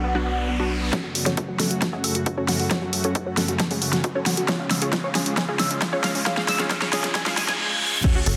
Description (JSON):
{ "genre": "uplifting trance", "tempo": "135 BPM", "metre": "4/4", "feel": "straight", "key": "F# harmonic minor", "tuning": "A4 = 440 Hz", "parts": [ { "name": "unison pluck", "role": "melody", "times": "0.0-8.3 s", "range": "F#3 to E#5", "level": "-31 LUFS", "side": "equal", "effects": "sidechain pumping, dub echo" }, { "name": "warm velvety synth lead", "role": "second line", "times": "0.0-0.8 s", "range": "F#5", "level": "-34 LUFS", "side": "equal", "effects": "chorus, cassette tape, dub echo" }, { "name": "lush unison pad", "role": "sustained chords", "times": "0.0-8.4 s", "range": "C#2 to F#4", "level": "-32 LUFS", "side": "equal", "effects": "chorus, sidechain pumping" }, { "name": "tight sequencer bass", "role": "bass", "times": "0.0-0.9, 8.3-8.4 s", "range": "F#1 to B1", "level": "-28 LUFS", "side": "equal", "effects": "sidechain pumping" }, { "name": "riser, reverse cymbal and sub drop", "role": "sound effects", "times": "0.0-8.4 s", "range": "none", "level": "-33 LUFS", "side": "equal", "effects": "none" }, { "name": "tight sequenced synth", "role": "arpeggios", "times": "0.9-8.3 s", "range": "E#4 to E6", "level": "-32 LUFS", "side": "equal", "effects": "chorus, sidechain pumping, dub echo" }, { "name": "big-room dance drum kit", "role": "drums", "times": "0.9-8.4 s", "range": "crash cymbal, hi-hat, snare drum", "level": "-27 LUFS", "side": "equal", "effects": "overdrive, sidechain pumping on hats, sidechain pumping on cymbals" }, { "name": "electronic kick drum", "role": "drums", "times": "0.9-8.1 s", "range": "none", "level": "-28 LUFS", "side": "equal", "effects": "high-pass filter on kick" } ], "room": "moderate lush hall reverb, RT60 1.9 s", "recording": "dense, heavily limited modern master, high-pass filter", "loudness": "-23 LUFS", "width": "mono", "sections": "0.9-8.0 A section", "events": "riser 0.0-0.9, 0.9-8.0; build-up 0.9-8.0; drum fill 0.9-7.6; filter sweep on synth pluck 0.9-8.0; filter sweep on synth arpeggio sound 0.9-8.0; filter sweep 0.9-8.0; reverse cymbal 7.2-8.0; impact 8.0-8.4", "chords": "0.0 Bm; 0.9 F#m; 4.5 C#" }